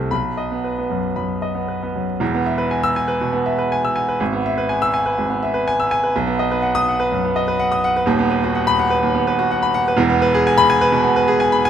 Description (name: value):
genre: classical, virtuoso piano study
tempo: 111-128 BPM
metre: 4/4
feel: rubato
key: E major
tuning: A4 = 440 Hz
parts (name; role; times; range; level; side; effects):
- clear grand piano; solo; 0.0-11.7 s; D#1 to E6; -16 LUFS; equal; none
room: light reverb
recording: close, detailed microphones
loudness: -16 LUFS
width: side -9 dB against mid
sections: 0.0-2.2 A section; 2.2-11.7 B section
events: none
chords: 0.1 B; 2.2 E; 4.2 E/G#; 6.1 B; 8.1 B/D#; 10.0 E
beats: | 0.10 0.64 1.17 1.69 | 2.21 2.72 3.21 3.70 | 4.20 4.70 5.18 5.66 | 6.13 6.61 7.09 7.58 | 8.06 8.54 9.02 9.49 | 9.97 10.45 10.92 11.40